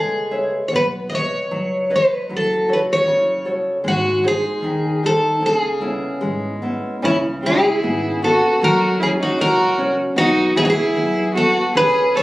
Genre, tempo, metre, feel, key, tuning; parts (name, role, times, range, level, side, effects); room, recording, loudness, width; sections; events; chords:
fado-style ballad; 76 BPM; 2/4; rubato; C# minor; A4 = 440 Hz
picked twelve-string acoustic guitar; melody; 0.0-12.2 s; E4 to D#5; -18 LUFS; equal
nylon-string guitar; accompaniment; 0.0-12.2 s; C#3 to E5; -23 LUFS; equal
upright bass; bass; 0.0-12.2 s; F#1 to F#2; -28 LUFS; equal
rich fiddle; second line; 7.0-12.2 s; C#4 to A4; -20 LUFS; right 1 dB
moderate recital hall reverb, RT60 1.5 s; recorded on a phone in the room, club reverb; -16 LUFS; side -18 dB against mid
0.0-7.0 A section; 7.0-12.2 A section
0.0 C#m7; 0.7 Badd9; 2.3 F#m; 3.8 G#; 5.4 C#m7; 8.6 F#5; 10.2 B5